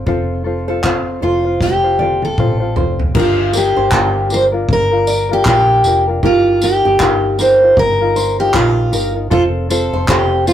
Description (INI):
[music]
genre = acoustic pop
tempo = 78 BPM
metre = 4/4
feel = swing 60% on 16ths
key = unclear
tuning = A4 = 440 Hz
[part]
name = tenor ukulele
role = accompaniment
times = 0.0-10.5 s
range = C4 to C5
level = -20 LUFS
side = left 3 dB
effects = none
[part]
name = vintage muted fingered electric bass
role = bass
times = 0.0-10.5 s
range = F1 to Bb1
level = -20 LUFS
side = equal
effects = none
[part]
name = nylon-string guitar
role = arpeggios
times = 0.1-10.4 s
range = G4 to D5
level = -25 LUFS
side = right 4 dB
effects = digital delay
[part]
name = unplugged drum kit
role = drums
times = 0.1-10.5 s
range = crash cymbal, handclaps, kick drum, snare drum, tambourine, toms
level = -18 LUFS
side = equal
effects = none
[part]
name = picked steel-string acoustic guitar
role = melody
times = 1.2-10.5 s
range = F4 to C5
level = -14 LUFS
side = equal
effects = none
[sound]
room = light reverb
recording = rough rehearsal-room recording, warm saturation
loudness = -12 LUFS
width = side -10 dB against mid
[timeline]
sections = 0.0-3.2 A section; 3.2-10.5 B section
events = drum fill 1.6-3.2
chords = 0.0 F; 3.2 Gm7; 6.2 Ebadd9/G; 9.3 F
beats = | 0.07 0.84 1.61 2.38 | 3.15 3.92 4.69 5.46 | 6.23 7.00 7.77 8.54 | 9.31 10.08